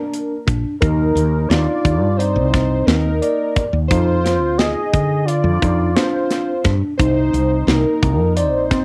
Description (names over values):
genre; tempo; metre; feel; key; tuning
progressive instrumental, band music in an uneven meter; 175 BPM (eighths); 9/8; straight; unclear; A4 = 440 Hz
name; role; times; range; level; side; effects
unison lead; melody; 0.0-8.8 s; Bb4 to Eb5; -25 LUFS; equal; cassette tape
breathy flugelhorn; second line; 0.0-8.8 s; D4 to Ab4; -26 LUFS; equal; cassette tape
bell-like tine electric piano; arpeggios; 0.0-8.8 s; D3 to D5; -24 LUFS; equal; cassette tape
tight metal drum kit; drums; 0.1-8.8 s; hi-hat, kick drum, snare drum; -23 LUFS; equal; none
woody fretless electric bass; bass; 0.5-8.8 s; Bb1 to G2; -21 LUFS; equal; none
room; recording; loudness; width
moderate booth ambience, RT60 0.2 s; home recording on cassette; -17 LUFS; mono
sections
0.0-8.8 A section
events
none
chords
0.0 Bb; 0.8 Ebsus2; 3.9 Fm; 7.0 Cm